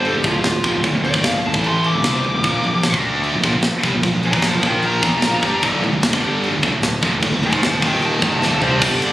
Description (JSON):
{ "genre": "heavy metal", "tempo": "151 BPM", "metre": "4/4", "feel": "straight", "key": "D minor", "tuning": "A4 = 440 Hz", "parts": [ { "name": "high-gain lead guitar", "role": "melody", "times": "0.0-9.1 s", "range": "F4 to D6", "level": "-21 LUFS", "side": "equal", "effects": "distortion, ping-pong delay" }, { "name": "heavy high-gain guitar", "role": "riff", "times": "0.0-9.1 s", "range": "D2 to G4", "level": "-24 LUFS", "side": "left 5 dB", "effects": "distortion" }, { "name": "scooped high-gain guitar", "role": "riff", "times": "0.0-9.1 s", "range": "D2 to G4", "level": "-22 LUFS", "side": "right 4 dB", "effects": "distortion" }, { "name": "fuzz fingered electric bass", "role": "bass", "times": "0.0-9.1 s", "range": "D1 to G2", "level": "-23 LUFS", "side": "equal", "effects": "overdrive" }, { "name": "tight metal drum kit", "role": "drums", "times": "0.0-9.1 s", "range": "crash cymbal, kick drum, ride cymbal, snare drum, toms", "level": "-21 LUFS", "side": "equal", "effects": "none" }, { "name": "heavy high-gain guitar", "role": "riff", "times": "2.4-8.8 s", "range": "D2 to G4", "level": "-25 LUFS", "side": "left 1 dB", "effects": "distortion" } ], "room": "light reverb", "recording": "recorded on a phone in the room, studio reverb, compression", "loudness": "-15 LUFS", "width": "side -15 dB against mid", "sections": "0.0-8.8 A section", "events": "lead electric guitar solo 0.0-8.8; drum fill 8.4-8.8", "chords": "0.1 Dm; 1.5 A5; 1.9 D5; 2.4 Bb5; 2.9 D5; 3.3 Bb5; 5.6 D5; 6.1 G5; 6.5 Dm; 7.8 Eb5; 8.2 Dm" }